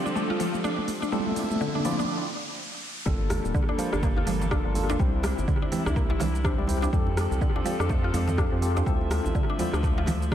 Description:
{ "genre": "afro house", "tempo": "124 BPM", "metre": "4/4", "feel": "swing 59% on 16ths", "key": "G dorian", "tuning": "A4 = 440 Hz", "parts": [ { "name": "warm studio string section", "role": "sustained chords", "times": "0.0-10.3 s", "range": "C3 to E5", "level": "-35 LUFS", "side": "right 1 dB", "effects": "sidechain pumping" }, { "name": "mallet-like synth pluck", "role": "arpeggios", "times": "0.0-10.3 s", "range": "D3 to F4", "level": "-31 LUFS", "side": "right 1 dB", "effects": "chorus, phaser, sidechain pumping, tape echo" }, { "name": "riser", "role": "sound effects", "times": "0.0-3.1 s", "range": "none", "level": "-38 LUFS", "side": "equal", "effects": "none" }, { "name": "afro-pop drum kit", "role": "drums", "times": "0.1-10.3 s", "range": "hi-hat, rim click, shaker, toms", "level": "-33 LUFS", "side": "equal", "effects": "small room reverb, analog delay" }, { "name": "bright tine electric piano", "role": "stabs", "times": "1.1-9.7 s", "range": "Bb3 to E5", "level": "-34 LUFS", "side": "left 2 dB", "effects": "medium stereo tremolo, sidechain pumping, analog delay" }, { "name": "round analog bass", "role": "bass", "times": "3.1-10.3 s", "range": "D1 to F2", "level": "-28 LUFS", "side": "equal", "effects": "sidechain pumping" }, { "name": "electronic kick drum", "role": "drums", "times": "3.1-10.3 s", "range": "none", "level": "-26 LUFS", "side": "equal", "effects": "small room reverb" }, { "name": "congas", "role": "percussion", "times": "3.1-10.3 s", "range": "none", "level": "-36 LUFS", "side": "equal", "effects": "analog delay" }, { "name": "djembe", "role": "percussion", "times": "3.1-10.2 s", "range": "none", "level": "-36 LUFS", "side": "left 1 dB", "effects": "none" } ], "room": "moderate echo chamber reverb, RT60 2.0 s", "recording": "echo-heavy mix", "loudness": "-24 LUFS", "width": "side -10 dB against mid", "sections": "0.0-3.1 A section; 3.1-10.3 B section", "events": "build-up 0.0-3.1; drum fill 0.0-2.1; riser 0.0-3.1; break 2.1-3.1; drop 3.1-10.3", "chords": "0.0 Fadd9; 1.1 Dm7; 3.1 Gm7; 5.0 C; 6.9 Fadd9; 8.9 Dm7", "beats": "0.15 0.64 | 1.12 1.61 2.09 2.57 | 3.06 3.54 4.03 4.51 | 4.99 5.48 5.96 6.45 | 6.93 7.41 7.90 8.38 | 8.87 9.35 9.83 10.32" }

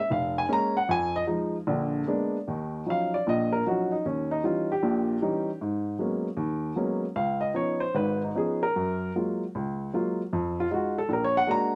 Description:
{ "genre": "solo jazz", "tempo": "154 BPM", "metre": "4/4", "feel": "swing 67% on 8ths, rubato", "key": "Eb minor", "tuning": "A4 = 438 Hz", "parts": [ { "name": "warm upright piano", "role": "solo", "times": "0.0-11.8 s", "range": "F1 to Bb5", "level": "-28 LUFS", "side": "equal", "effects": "none" } ], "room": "light reverb", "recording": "none", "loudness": "-28 LUFS", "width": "mono", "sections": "0.0-2.5 A section; 2.5-11.8 A section", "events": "upright piano solo 0.0-2.5, 2.5-11.8", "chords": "0.0 Bbm7; 0.9 Fm7; 1.7 Bb7b9; 2.5 Ebm9; 4.1 Eb7b9; 5.6 Abm11; 7.2 Db9; 8.7 Gbmaj9; 10.3 F7#9; 11.1 Bbaug7", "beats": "0.10 0.49 | 0.88 1.27 1.67 2.08 | 2.48 2.88 3.28 3.67 | 4.05 4.44 4.83 5.22 | 5.61 6.00 6.38 6.77 | 7.16 7.56 7.95 8.35 | 8.75 9.15 9.54 9.93 | 10.32 10.71 11.10 11.48" }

